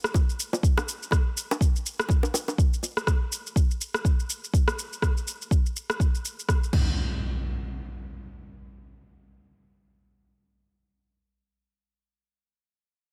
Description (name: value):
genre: afro house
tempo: 123 BPM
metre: 4/4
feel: swing 58% on 16ths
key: none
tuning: none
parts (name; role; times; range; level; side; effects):
- deep house drum kit; drums; 0.0-6.8 s; crash cymbal, rim click, shaker; -33 LUFS; equal; none
- electronic kick drum; drums; 0.1-6.8 s; none; -25 LUFS; equal; none
- bongos; percussion; 0.1-2.9 s; none; -32 LUFS; equal; none
- impact; sound effects; 6.7-11.4 s; none; -34 LUFS; equal; none
room: little or no reverb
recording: none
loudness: -26 LUFS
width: mono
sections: 0.0-7.0 A section; 7.0-10.9 B section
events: none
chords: none